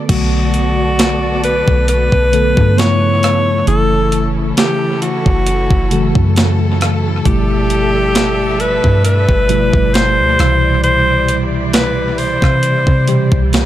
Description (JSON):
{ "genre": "contemporary R&B", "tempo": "67 BPM", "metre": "4/4", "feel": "swing 54% on 16ths", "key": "unclear", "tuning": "A4 = 440 Hz", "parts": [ { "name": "mellow tine electric piano", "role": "accompaniment", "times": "0.0-13.7 s", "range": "B2 to A4", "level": "-18 LUFS", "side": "equal", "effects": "medium stereo tremolo, dub echo" }, { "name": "warm studio string section", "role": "sustained chords", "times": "0.0-13.7 s", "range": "C#3 to E5", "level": "-24 LUFS", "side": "left 1 dB", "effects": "none" }, { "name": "bright alto saxophone", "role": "melody", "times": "0.1-13.5 s", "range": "F#4 to C#5", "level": "-16 LUFS", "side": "equal", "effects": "dub echo" }, { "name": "soft 808-style bass", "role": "bass", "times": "0.1-13.7 s", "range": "F#1 to C3", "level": "-16 LUFS", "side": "equal", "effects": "none" }, { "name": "clean 12-bit digital drum machine", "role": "drums", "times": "0.1-13.7 s", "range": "crash cymbal, hi-hat, kick drum, rim click, snare drum", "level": "-17 LUFS", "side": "equal", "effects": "overdrive" } ], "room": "little or no reverb", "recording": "echo-heavy mix", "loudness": "-11 LUFS", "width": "side -13 dB against mid", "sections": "0.1-13.7 A section", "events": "none", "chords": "0.1 Bm7; 2.8 C#7alt; 3.7 F#m7; 7.3 G13; 10.4 Cmaj7" }